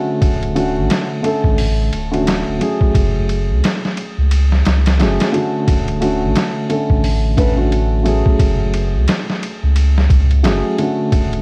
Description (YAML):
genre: trip hop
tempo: 88 BPM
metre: 4/4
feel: swing 60% on 16ths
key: F# minor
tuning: A4 = 437 Hz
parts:
  - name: felt-muted upright piano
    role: accompaniment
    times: 0.0-11.4 s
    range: D3 to B4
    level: -21 LUFS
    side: equal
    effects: harmonic tremolo, tape echo
  - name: warm sub bass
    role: bass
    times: 0.2-11.4 s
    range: D1 to C#2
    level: -18 LUFS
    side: equal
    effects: tube saturation
  - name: trip hop sampler-style drum kit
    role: drums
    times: 0.2-11.4 s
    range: hi-hat, kick drum, ride cymbal, snare drum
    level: -21 LUFS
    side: equal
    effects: studio reverb
room: little or no reverb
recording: worn, warbling old tape, cassette tape, vinyl crackle, warbly pitch drift, faint mains hum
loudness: -16 LUFS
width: mono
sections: 0.0-11.4 A section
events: none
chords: 0.2 Dmaj7; 2.9 F#madd9; 5.7 Dmaj7; 8.4 F#madd9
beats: | 0.21 0.90 1.58 2.26 | 2.94 3.62 4.30 4.99 | 5.67 6.35 7.03 7.71 | 8.39 9.08 9.76 10.44 | 11.12